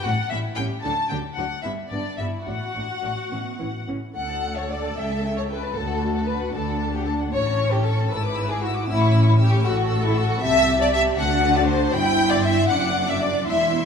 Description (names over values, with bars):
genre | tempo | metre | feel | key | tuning
quick classical-period movement for string orchestra | 70-79 BPM (dotted quarters) | 6/8 | rubato | D major | A4 = 440 Hz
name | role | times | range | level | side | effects
rich studio violin section | melody | 0.0-13.9 s | D5 to E6 | -31 LUFS | left 4 dB | none
dark studio violin section | second line | 0.0-13.9 s | D4 to G5 | -24 LUFS | left 2 dB | none
rich studio double bass section | bass | 0.0-13.9 s | E1 to D2 | -26 LUFS | right 1 dB | none
warm studio viola section | accompaniment | 0.1-13.9 s | E3 to A4 | -29 LUFS | equal | none
warm studio cello section | bass | 0.1-13.9 s | C#2 to D3 | -26 LUFS | equal | none
room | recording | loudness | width
wet concert hall reverb, RT60 2.3 s | none | -20 LUFS | side -6 dB against mid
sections
0.0-4.2 A section; 4.2-13.9 B section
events
none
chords
0.1 A7; 0.8 D; 1.6 G6; 2.5 D; 3.3 A; 4.2 D; 5.0 A7/C#; 5.8 D; 7.3 A; 8.1 E7/G#; 8.9 A; 10.4 Am7/C; 11.2 D; 12.0 G; 12.7 D/F#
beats
0.05 | 0.84 1.64 | 2.47 3.32 | 4.16 4.97 | 5.76 6.55 | 7.34 8.12 | 8.90 9.67 | 10.43 11.19 | 11.95 12.71 | 13.48